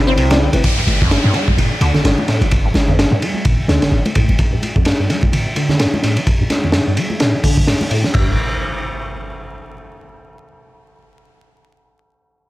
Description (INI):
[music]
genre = breakbeat, breaks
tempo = 128 BPM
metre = 4/4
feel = swing 57% on 16ths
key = G mixolydian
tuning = A4 = 441 Hz
[part]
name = lush unison pad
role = sustained chords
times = 0.0-0.6 s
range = C3 to B4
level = -30 LUFS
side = equal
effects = none
[part]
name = warm 808-style bass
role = bass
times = 0.0-4.4, 8.1-8.4 s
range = G1 to G2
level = -17 LUFS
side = equal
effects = none
[part]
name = deep acid bass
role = riff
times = 0.1-8.4 s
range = F2 to C4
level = -19 LUFS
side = equal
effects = ensemble chorus, ping-pong delay
[part]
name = mellow tine electric piano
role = stabs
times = 0.1-0.6 s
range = C4 to D5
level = -21 LUFS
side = left 2 dB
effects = ping-pong delay
[part]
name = crunchy breakbeat drum kit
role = drums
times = 0.2-8.3 s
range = crash cymbal, hi-hat, kick drum, ride cymbal, snare drum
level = -16 LUFS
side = equal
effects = none
[part]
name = congas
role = percussion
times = 0.3-8.1 s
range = none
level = -24 LUFS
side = right 1 dB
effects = none
[part]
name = downlifter and impact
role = sound effects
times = 0.6-4.4, 8.1-10.0 s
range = none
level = -26 LUFS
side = equal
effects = none
[sound]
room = small room ambience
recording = vinyl crackle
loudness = -13 LUFS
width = side -17 dB against mid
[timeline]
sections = 0.6-8.1 A section; 8.1-10.0 B section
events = filter sweep on acid bass 0.6-8.1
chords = 0.0 Cmaj7; 0.6 G5; 8.1 N.C.